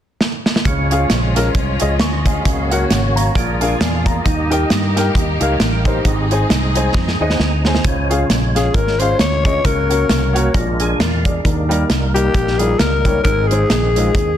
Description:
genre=uptempo gospel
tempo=134 BPM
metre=4/4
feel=swing 56% on 8ths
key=Db major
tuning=A4 = 440 Hz
part: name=modern studio drum kit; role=drums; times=0.2-14.3 s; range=hi-hat, kick drum, snare drum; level=-18 LUFS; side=right 1 dB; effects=none
part: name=clear studio string section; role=sustained chords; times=0.6-7.8 s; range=F3 to Ab4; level=-27 LUFS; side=left 1 dB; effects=none
part: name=warm upright piano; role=accompaniment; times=0.7-14.1 s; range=Ab2 to Db6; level=-21 LUFS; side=left 1 dB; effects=none
part: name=percussive tonewheel organ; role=sustained chords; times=0.7-14.4 s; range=Eb3 to Bb5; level=-24 LUFS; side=right 2 dB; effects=slow rotary speaker, overdrive, chorus vibrato
part: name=fingered electric bass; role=bass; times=0.7-14.4 s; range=Ab1 to G2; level=-19 LUFS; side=equal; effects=none
part: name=breathy alto saxophone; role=melody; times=8.6-14.4 s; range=G4 to Db5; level=-18 LUFS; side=left 4 dB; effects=none
room=light reverb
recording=dense, heavily limited modern master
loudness=-14 LUFS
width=side -10 dB against mid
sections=0.7-7.8 A section; 7.8-14.4 B section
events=drum fill 0.2-0.7, 6.9-7.8; tonewheel organ fill 3.4-4.3, 6.5-7.8, 10.5-11.4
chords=0.0 N.C.; 0.7 Db; 2.5 Gb/Db; 3.4 Bb7; 4.3 Eb; 6.0 Ab; 7.8 Db; 9.6 Gb/Db; 10.5 Bb7; 11.4 Eb; 13.3 Ab

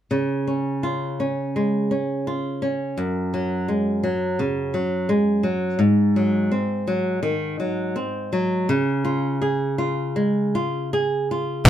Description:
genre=fado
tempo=77-86 BPM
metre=4/4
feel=rubato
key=Db major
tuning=A4 = 438 Hz
part: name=flamenco guitar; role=accompaniment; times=0.1-11.7 s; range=Gb2 to Ab4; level=-20 LUFS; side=equal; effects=none
room=wet small room reverb, RT60 0.5 s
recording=dark, warm production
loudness=-20 LUFS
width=side -10 dB against mid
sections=0.1-11.7 A section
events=none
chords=0.1 Db; 3.0 Gbsus2; 5.8 Ab7; 8.7 Db

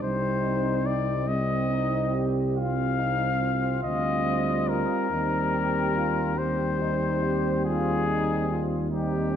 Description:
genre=classical, hymn-like piece for brass band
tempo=47 BPM (dotted quarters)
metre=12/8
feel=rubato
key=C minor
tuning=A4 = 442 Hz
part: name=warm cornet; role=melody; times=0.0-9.4 s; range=G4 to F5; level=-28 LUFS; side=left 5 dB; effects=none
part: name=mellow French horn section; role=second line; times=0.0-9.4 s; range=C4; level=-32 LUFS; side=right 8 dB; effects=none
part: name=bright trombone section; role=accompaniment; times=0.0-9.4 s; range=C4 to G4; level=-33 LUFS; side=left 2 dB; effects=none
part: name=warm trombone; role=accompaniment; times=0.0-9.4 s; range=G3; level=-33 LUFS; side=right 2 dB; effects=none
part: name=mellow tuba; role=bass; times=0.0-9.4 s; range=C2 to Eb2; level=-29 LUFS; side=equal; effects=none
room=moderate recital hall reverb, RT60 1.6 s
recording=dark, warm production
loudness=-23 LUFS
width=side -9 dB against mid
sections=0.0-9.4 A section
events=none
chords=0.0 Cm; 5.1 Cm/Eb

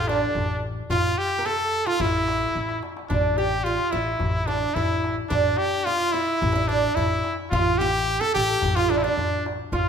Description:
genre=Arabic maqam ensemble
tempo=109 BPM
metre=4/4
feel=straight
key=A maqam hijaz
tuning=A4 = 440 Hz
part: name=brilliant trumpet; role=melody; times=0.0-9.9 s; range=D4 to A4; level=-24 LUFS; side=left 1 dB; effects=none
part: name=oud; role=second line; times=0.0-9.9 s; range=D4 to Bb4+25c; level=-26 LUFS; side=right 4 dB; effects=none
part: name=upright bass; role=bass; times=0.0-9.9 s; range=A1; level=-29 LUFS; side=left 1 dB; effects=none
part: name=darbuka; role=percussion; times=0.1-9.9 s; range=none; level=-30 LUFS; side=left 2 dB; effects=none
room=wet recital hall reverb, RT60 1.6 s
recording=none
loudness=-21 LUFS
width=side -7 dB against mid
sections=0.0-9.9 A section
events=drum fill 2.6-3.1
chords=none

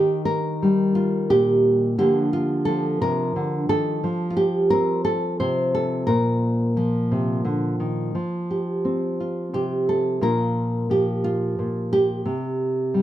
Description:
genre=folk, solo fingerstyle acoustic guitar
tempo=59 BPM (dotted quarters)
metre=6/8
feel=straight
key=Bb major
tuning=A4 = 440 Hz
part: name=nylon-string guitar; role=solo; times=0.0-13.0 s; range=Bb2 to C5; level=-20 LUFS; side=equal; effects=none
room=light reverb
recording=none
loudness=-20 LUFS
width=side -12 dB against mid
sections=0.0-8.1 A section; 8.1-13.0 B section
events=none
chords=0.0 Eb; 2.0 Bb/D; 4.0 F5; 6.1 Bb; 8.1 Fsus2; 10.2 Bb; 12.3 C5

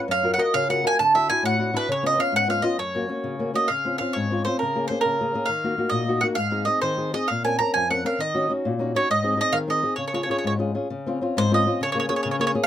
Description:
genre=italian folk, Italian serenade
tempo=133 BPM (dotted quarters)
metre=6/8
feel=rubato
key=F# major, Db major from 3.7 s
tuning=A4 = 440 Hz
part: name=nylon-string guitar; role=accompaniment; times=0.0-12.7 s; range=F2 to A#4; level=-24 LUFS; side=left 2 dB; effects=none
part: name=mandolin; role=melody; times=0.1-12.7 s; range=Bb4 to Bb5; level=-22 LUFS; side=right 2 dB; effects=none
room=light reverb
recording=close, detailed microphones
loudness=-21 LUFS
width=side -11 dB against mid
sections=0.0-3.7 A section; 3.7-10.9 B section; 10.9-12.7 B section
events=none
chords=0.1 F#maj7; 1.0 Dadd9; 1.9 C#7; 2.8 F#; 3.7 Dbmaj7; 4.6 Bbm7/Db; 5.5 Ebm; 6.4 Ab; 7.3 Bbmadd9; 8.2 Ebm7; 9.1 Ab; 10.0 Db; 10.9 Dbmaj7; 11.8 Bbm7/Db

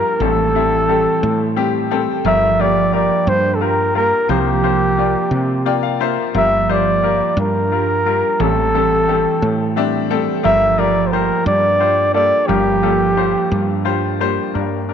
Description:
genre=acoustic folk-pop ballad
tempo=58 BPM (dotted quarters)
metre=6/8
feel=straight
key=G dorian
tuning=A4 = 440 Hz
part: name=warm flugelhorn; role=melody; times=0.0-13.8 s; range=G4 to E5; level=-16 LUFS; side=equal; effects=none
part: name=bright upright piano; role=accompaniment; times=0.0-14.9 s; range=G1 to G5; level=-20 LUFS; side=left 12 dB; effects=none
part: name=concert harp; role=arpeggios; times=0.0-14.9 s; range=E3 to G4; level=-22 LUFS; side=right 12 dB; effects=tape echo
part: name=woody fretless electric bass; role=bass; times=0.2-14.9 s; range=G1 to C3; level=-22 LUFS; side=equal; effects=none
room=moderate spring reverb, RT60 2.3 s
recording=1960s-style stereo with parts hard left and right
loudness=-14 LUFS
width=side -8 dB against mid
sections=0.0-14.6 A section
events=none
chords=0.2 Am7; 2.2 Gm7; 4.3 C7sus4; 6.3 Gm7; 8.4 Am7; 10.4 Gm7

